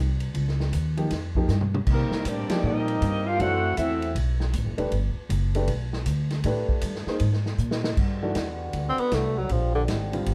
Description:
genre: jazz, big band swing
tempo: 157 BPM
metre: 4/4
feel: swing 64% on 8ths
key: unclear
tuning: A4 = 440 Hz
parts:
  - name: upright bass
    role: bass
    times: 0.0-10.3 s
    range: D#1 to C3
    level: -28 LUFS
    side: equal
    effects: none
  - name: swinging big-band drum kit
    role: drums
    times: 0.2-10.3 s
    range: crash cymbal, hi-hat, kick drum, ride cymbal, snare drum, toms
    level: -33 LUFS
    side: equal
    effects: none
  - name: clear upright piano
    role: accompaniment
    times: 1.0-10.3 s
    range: D3 to C5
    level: -32 LUFS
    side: equal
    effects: none
  - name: warm saxophone section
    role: melody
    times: 1.9-4.1 s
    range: G3 to F#5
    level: -30 LUFS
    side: equal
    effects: none
  - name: bright trombone section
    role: second line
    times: 1.9-4.1 s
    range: Eb3 to F#4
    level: -31 LUFS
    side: equal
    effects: none
  - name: muted trombone section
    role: sustained chords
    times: 7.9-10.3 s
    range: D3 to G4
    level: -38 LUFS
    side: equal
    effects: none
  - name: clear tenor saxophone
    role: melody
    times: 8.9-9.8 s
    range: D3 to C4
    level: -28 LUFS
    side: equal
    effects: none
room: light reverb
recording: dark, warm production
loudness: -26 LUFS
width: mono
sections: 0.0-8.0 A section; 8.0-10.3 B section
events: drum fill 1.5-1.9, 7.6-8.0; tenor saxophone solo 8.0-10.3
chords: 0.3 C#add9; 1.9 Cm7; 3.4 F#m7b5; 4.2 B7b13; 4.9 Gmaj7/F#; 6.4 Am9; 7.2 Absus2; 8.0 Gmaj7; 9.5 Bb13

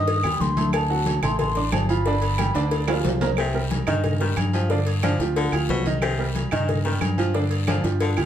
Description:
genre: latin, salsa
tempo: 182 BPM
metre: 4/4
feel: straight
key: C minor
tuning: A4 = 440 Hz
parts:
  - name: mellow baroque flute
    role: melody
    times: 0.0-3.0 s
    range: A5 to Eb6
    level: -27 LUFS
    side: equal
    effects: none
  - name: clear baby grand piano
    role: accompaniment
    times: 0.0-8.3 s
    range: D3 to D6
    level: -27 LUFS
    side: right 3 dB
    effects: none
  - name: fingered electric bass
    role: bass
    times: 0.0-8.3 s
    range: G1 to G2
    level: -24 LUFS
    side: equal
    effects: none
  - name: agogo bells and timbales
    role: percussion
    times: 0.1-8.3 s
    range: none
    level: -31 LUFS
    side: right 3 dB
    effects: none
  - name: congas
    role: percussion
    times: 0.1-8.3 s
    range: none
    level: -29 LUFS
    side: left 2 dB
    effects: none
  - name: cowbell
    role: percussion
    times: 0.1-8.2 s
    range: none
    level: -31 LUFS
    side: left 5 dB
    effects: none
  - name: guiro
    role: percussion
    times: 0.1-8.3 s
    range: none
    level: -39 LUFS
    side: left 6 dB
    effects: none
  - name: claves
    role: percussion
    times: 0.2-8.3 s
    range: none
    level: -35 LUFS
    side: right 6 dB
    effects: none
  - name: clear baritone saxophone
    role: second line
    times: 3.4-8.2 s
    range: B2 to F3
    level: -29 LUFS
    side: left 4 dB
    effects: none
room: wet studio ambience, RT60 0.5 s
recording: heard from further back in the room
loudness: -20 LUFS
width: side -10 dB against mid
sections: 0.0-3.4 A section; 3.4-8.3 B section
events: drum fill 2.6-3.4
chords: 0.0 Cm; 0.7 D7; 2.1 G7; 3.4 Cm7; 4.7 G7(no3); 6.0 Cm7; 7.3 G7(no3)

